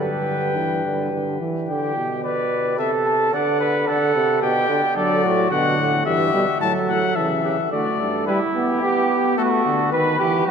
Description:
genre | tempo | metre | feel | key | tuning
classical, imitative canzona for brass ensemble | 109 BPM | 3/4 | straight | G major | A4 = 439 Hz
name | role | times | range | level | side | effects
mellow trumpet | melody | 0.0-10.5 s | G4 to A5 | -23 LUFS | left 7 dB | none
warm flugelhorn | second line | 0.0-10.5 s | E4 to D5 | -22 LUFS | right 3 dB | none
warm trombone | accompaniment | 0.0-1.7, 5.0-10.5 s | D3 to B3 | -24 LUFS | right 1 dB | none
clear bass trombone | bass | 0.0-8.3 s | G2 to D3 | -26 LUFS | right 1 dB | none
room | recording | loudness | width
wet cathedral reverb, RT60 5.3 s | minimal, uncompressed stereo recording, lossy compression artefacts | -18 LUFS | side -6 dB against mid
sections
0.0-1.7 A section; 1.7-8.3 B section; 8.3-10.5 C section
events
none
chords
0.0 G; 2.8 Am/C; 3.3 D; 4.4 G/B; 5.0 D; 6.1 Em/G; 6.6 A; 7.7 D; 8.3 Em/G; 9.4 D; 9.9 B/D#

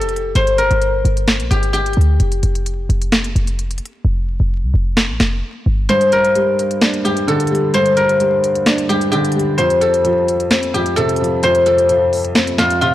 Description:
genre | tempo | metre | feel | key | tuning
hip hop, trap | 130 BPM | 4/4 | half-time | G minor | A4 = 444 Hz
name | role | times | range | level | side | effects
guzheng | melody | 0.0-12.9 s | F4 to C5 | -15 LUFS | left 2 dB | none
short 808-style bass | bass | 0.0-5.9 s | F1 to D2 | -16 LUFS | equal | none
trap drum kit | drums | 0.0-12.9 s | finger snaps, hi-hat, snare drum | -19 LUFS | equal | soft clipping on snare
warm baby grand piano | accompaniment | 5.9-12.9 s | F2 to D4 | -18 LUFS | right 1 dB | none
room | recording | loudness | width
light reverb, small room ambience | blown-out, overdriven recording, vinyl crackle, overdrive | -13 LUFS | side -14 dB against mid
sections
0.0-12.9 A section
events
break 2.2-5.9; hi-hats muted 4.0-5.9; kick muted 5.9-12.9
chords
0.0 Gm; 2.2 N.C.; 5.9 Gm; 9.6 F

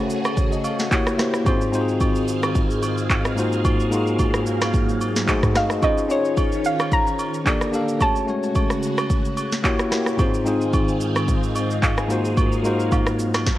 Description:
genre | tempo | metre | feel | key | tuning
amapiano | 110 BPM | 4/4 | swing 55% on 16ths | unclear | A4 = 440 Hz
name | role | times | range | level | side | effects
bell-like tine electric piano | accompaniment | 0.0-13.5 s | Ab2 to Ab5 | -22 LUFS | left 2 dB | none
phased string machine | sustained chords | 0.0-13.5 s | Ab2 to F5 | -28 LUFS | right 1 dB | ensemble chorus, phaser
afro-pop drum kit | drums | 0.1-13.6 s | handclaps, kick drum, rim click, shaker, snare drum, toms | -22 LUFS | equal | none
agogo bells and woodblock | percussion | 0.3-13.5 s | none | -31 LUFS | right 4 dB | none
soft round pluck | melody | 5.6-9.9 s | Db5 to Bb5 | -24 LUFS | equal | chorus
reverse cymbal | sound effects | 13.5-13.6 s | none | -35 LUFS | left 1 dB | none
room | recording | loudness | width
light reverb | worn, warbling old tape, cassette tape, warbly pitch drift | -18 LUFS | side -14 dB against mid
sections
0.0-13.6 A section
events
none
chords
0.0 Gbmadd9; 0.9 Edim7; 1.5 Fm7/Ab; 3.4 Ab13; 5.3 Ab7b9; 5.8 Dbmaj9; 7.5 Gmadd9; 8.0 Gbmadd9; 9.6 Edim7; 10.2 Fm7/Ab; 12.1 Ab13

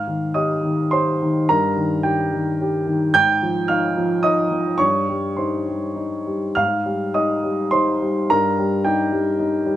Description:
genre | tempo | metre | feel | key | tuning
neoclassical minimalist piano | 100-112 BPM | 3/4 | rubato | unclear | A4 = 442 Hz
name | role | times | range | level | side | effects
warm upright piano | solo | 0.0-9.8 s | G2 to G6 | -18 LUFS | equal | none
room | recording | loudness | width
light reverb | nothing above 10.8 kHz | -18 LUFS | side -12 dB against mid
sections
0.0-9.8 A section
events
none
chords
0.0 Abmaj7; 1.5 Eb/G; 3.1 Fm7/Ab; 4.8 Cm/G; 6.6 Abmaj7; 8.3 Eb/G

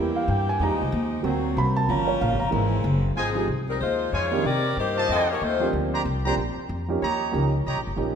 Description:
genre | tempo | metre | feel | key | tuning
jazz, big band swing | 187 BPM | 4/4 | swing 61% on 8ths | F minor | A4 = 440 Hz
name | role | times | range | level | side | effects
warm concert grand piano | accompaniment | 0.0-8.2 s | Eb3 to B5 | -26 LUFS | right 3 dB | none
warm saxophone section | sustained chords | 0.0-3.2 s | E3 to Bb4 | -33 LUFS | left 3 dB | none
upright bass | bass | 0.0-8.2 s | F1 to C3 | -26 LUFS | left 1 dB | none
mellow saxophone section | melody | 3.2-5.7 s | F3 to Eb5 | -25 LUFS | left 4 dB | none
mellow trumpet section | stabs | 3.2-7.8 s | F4 to Bb5 | -30 LUFS | right 2 dB | none
room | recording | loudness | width
moderate concert hall reverb, RT60 2.3 s | minimal, uncompressed stereo recording | -22 LUFS | side -7 dB against mid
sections
0.0-3.2 A section; 3.2-8.2 B section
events
grand piano solo 0.0-3.2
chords
0.0 C7; 0.6 Fm9; 1.2 D7b13; 1.9 Gm7b5; 2.5 Caug7; 3.2 Fm7; 4.5 Cm7; 5.1 F7; 5.7 Bb69; 7.0 Eb7

